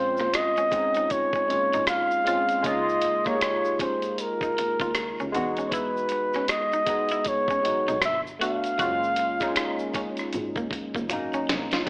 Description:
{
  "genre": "R&B, neo-soul",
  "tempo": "78 BPM",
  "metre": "4/4",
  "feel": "swing 61% on 16ths",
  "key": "Db major",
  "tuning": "A4 = 439 Hz",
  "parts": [
    { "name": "mellow flugelhorn", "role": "melody", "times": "0.0-9.9 s", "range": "Bb4 to F5", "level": "-24 LUFS", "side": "equal", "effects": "slapback echo" },
    { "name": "barky tine electric piano", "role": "accompaniment", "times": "0.0-11.9 s", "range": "Gb3 to Ab4", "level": "-29 LUFS", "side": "equal", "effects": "analog chorus" },
    { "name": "warm double bass", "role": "bass", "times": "0.0-11.7 s", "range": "Gb1 to E2", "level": "-38 LUFS", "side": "equal", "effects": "none" },
    { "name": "electric guitar at the edge of break-up", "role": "second line", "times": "0.2-11.8 s", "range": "Bb3 to F#4", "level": "-32 LUFS", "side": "right 1 dB", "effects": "spring reverb" },
    { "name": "dusty soul sampler-style drum kit", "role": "drums", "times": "0.2-11.9 s", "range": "crash cymbal, hi-hat, kick drum, rim click, snare drum", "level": "-30 LUFS", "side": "equal", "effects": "none" },
    { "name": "tube shaker and finger snaps", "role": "percussion", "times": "0.2-11.9 s", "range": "none", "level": "-38 LUFS", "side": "right 1 dB", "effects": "none" }
  ],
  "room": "light reverb, small room ambience",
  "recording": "AM radio sound",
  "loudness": "-23 LUFS",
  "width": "side -31 dB against mid",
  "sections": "0.0-11.9 A section",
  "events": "drum fill 11.1-11.9",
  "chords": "0.0 Bbm9; 2.6 Db69; 5.3 Emaj7; 8.0 Gmaj9; 8.8 Gbmaj9; 11.1 Ab9sus4"
}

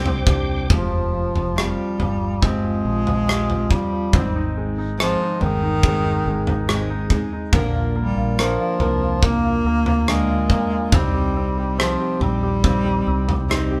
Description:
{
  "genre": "pop ballad",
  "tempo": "70 BPM",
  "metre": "4/4",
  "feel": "straight",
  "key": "unclear",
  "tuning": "A4 = 440 Hz",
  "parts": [
    { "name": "clear bass clarinet", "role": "melody", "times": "0.0-13.8 s", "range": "Eb3 to C4", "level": "-25 LUFS", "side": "equal", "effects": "none" },
    { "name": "bright concert grand piano", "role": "accompaniment", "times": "0.0-13.8 s", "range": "F3 to G4", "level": "-29 LUFS", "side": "equal", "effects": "none" },
    { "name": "bright tonewheel organ", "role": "sustained chords", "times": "0.0-0.7 s", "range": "C5 to D6", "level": "-32 LUFS", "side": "equal", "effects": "chorus vibrato, fast rotary speaker" },
    { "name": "fingerpicked plugged-in steel-string acoustic guitar", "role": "arpeggios", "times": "0.0-13.8 s", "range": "Ab2 to Bb4", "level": "-31 LUFS", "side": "equal", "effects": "none" },
    { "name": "mellow fretless electric bass", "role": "bass", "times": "0.0-13.8 s", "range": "F1 to D2", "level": "-27 LUFS", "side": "equal", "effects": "none" },
    { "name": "modern studio drum kit", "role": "drums", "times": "0.1-13.7 s", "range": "kick drum, rim click, toms", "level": "-24 LUFS", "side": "equal", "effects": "none" }
  ],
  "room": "light reverb",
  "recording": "band playing live in one room",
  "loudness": "-20 LUFS",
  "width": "mono",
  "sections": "0.7-13.8 A section",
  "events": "none",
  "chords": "0.0 Csus2; 0.7 Fmadd9; 4.1 Ab; 7.5 Bb; 10.9 Cm"
}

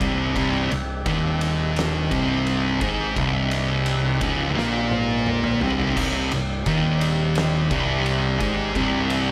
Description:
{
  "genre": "stoner and doom metal",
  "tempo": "86 BPM",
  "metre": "4/4",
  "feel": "straight",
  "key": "C minor",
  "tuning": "A4 = 442 Hz",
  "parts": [
    { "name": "metallic inharmonic drone", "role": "sustained chords", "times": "0.0-9.3 s", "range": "C4 to D5", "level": "-36 LUFS", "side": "equal", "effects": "chorus, built-in reverb" },
    { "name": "thick fuzz guitar", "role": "riff", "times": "0.0-9.3 s", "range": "C2 to Bb3", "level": "-25 LUFS", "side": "equal", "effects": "distortion" },
    { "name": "overdriven fingered electric bass", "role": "bass", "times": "0.0-9.3 s", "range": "C1 to Bb1", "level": "-33 LUFS", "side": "equal", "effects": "none" },
    { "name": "oversized low-tuned drum kit", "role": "drums", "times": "0.0-9.3 s", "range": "crash cymbal, kick drum, ride cymbal, snare drum, toms", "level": "-31 LUFS", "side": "equal", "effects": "none" },
    { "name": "thick fuzz guitar", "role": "riff", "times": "0.3-9.3 s", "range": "C2 to Bb3", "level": "-29 LUFS", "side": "equal", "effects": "distortion" }
  ],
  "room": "light reverb",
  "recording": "none",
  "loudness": "-22 LUFS",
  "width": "mono",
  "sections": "0.0-6.0 A section; 6.0-9.3 A section",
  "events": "drum fill 4.6-6.0",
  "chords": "0.0 Cm"
}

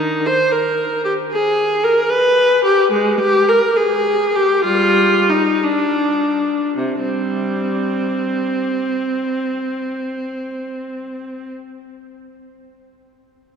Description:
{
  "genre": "classical, baroque-style suite movement for unaccompanied viola",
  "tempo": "49-78 BPM (dotted quarters)",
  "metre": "6/8",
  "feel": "rubato",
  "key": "C minor",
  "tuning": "A4 = 440 Hz",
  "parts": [
    { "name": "rich viola", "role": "solo", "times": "0.0-11.5 s", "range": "C3 to C5", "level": "-15 LUFS", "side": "equal", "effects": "none" }
  ],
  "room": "wet cathedral reverb, RT60 5.5 s",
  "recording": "recorded in a church or concert hall",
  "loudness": "-15 LUFS",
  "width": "side -6 dB against mid",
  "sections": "0.0-6.8 A section; 6.8-11.3 B section",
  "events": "slowing down 2.1-6.8",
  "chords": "none"
}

